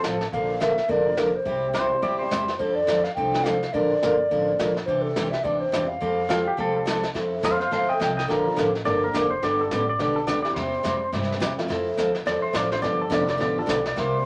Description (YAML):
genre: country, western swing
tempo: 211 BPM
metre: 4/4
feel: swing 59% on 8ths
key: F major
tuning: A4 = 444 Hz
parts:
  - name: pedal steel guitar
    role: second line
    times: 0.0-2.5, 6.3-14.3 s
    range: F4 to Bb5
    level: -28 LUFS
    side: equal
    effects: none
  - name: dark upright piano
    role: accompaniment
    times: 0.0-5.9, 8.4-13.7 s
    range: E3 to Bb4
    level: -36 LUFS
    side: equal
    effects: none
  - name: picked steel-string acoustic guitar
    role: accompaniment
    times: 0.0-14.2 s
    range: C3 to Bb4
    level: -27 LUFS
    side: equal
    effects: none
  - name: vintage brush drum kit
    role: drums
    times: 0.0-14.3 s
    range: brushed snare drum, hi-hat, kick drum, snare drum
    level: -34 LUFS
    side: equal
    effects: none
  - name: upright bass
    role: bass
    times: 0.1-14.2 s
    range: F1 to G2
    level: -38 LUFS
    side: equal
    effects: none
  - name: mellow hollow tenor recorder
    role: melody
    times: 0.3-6.9 s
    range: A4 to G5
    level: -27 LUFS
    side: equal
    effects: none
room: wet studio ambience, RT60 0.5 s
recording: none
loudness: -24 LUFS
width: mono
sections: 0.0-7.2 A section; 7.2-14.3 B section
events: pedal steel guitar solo 7.2-14.3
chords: 0.3 Bb; 1.5 C; 2.6 F6; 3.7 Bb; 4.9 Cadd9; 6.0 Fadd9; 7.2 Fmaj7; 8.3 Bb6; 9.4 G; 10.6 C; 11.7 Fmaj7; 12.8 G7